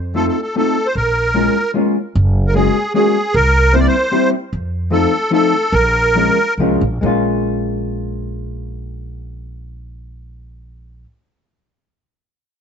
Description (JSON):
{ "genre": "musette waltz", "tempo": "132-153 BPM", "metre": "3/4", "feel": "straight", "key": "Bb minor", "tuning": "A4 = 440 Hz", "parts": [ { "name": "upright bass", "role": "bass", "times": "0.0-11.0 s", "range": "Gb1 to F2", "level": "-19 LUFS", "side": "right 1 dB", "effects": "none" }, { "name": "hollow-body jazz guitar", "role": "accompaniment", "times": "0.1-11.1 s", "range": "F3 to Ab4", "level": "-17 LUFS", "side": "left 2 dB", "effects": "none" }, { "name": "musette accordion", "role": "melody", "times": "0.2-6.5 s", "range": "Ab4 to D5", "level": "-16 LUFS", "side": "right 1 dB", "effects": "plate reverb" } ], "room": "moderate studio reverb, RT60 0.6 s", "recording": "nothing above 7.9 kHz", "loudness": "-13 LUFS", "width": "side -7 dB against mid", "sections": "0.0-2.1 A section; 2.1-7.0 B section; 7.0-9.7 C section", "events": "slowing down 4.5-7.0", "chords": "0.0 F7; 1.0 Bbm7; 2.1 Gbadd9; 3.3 C7; 4.5 F7; 5.7 Bbm7" }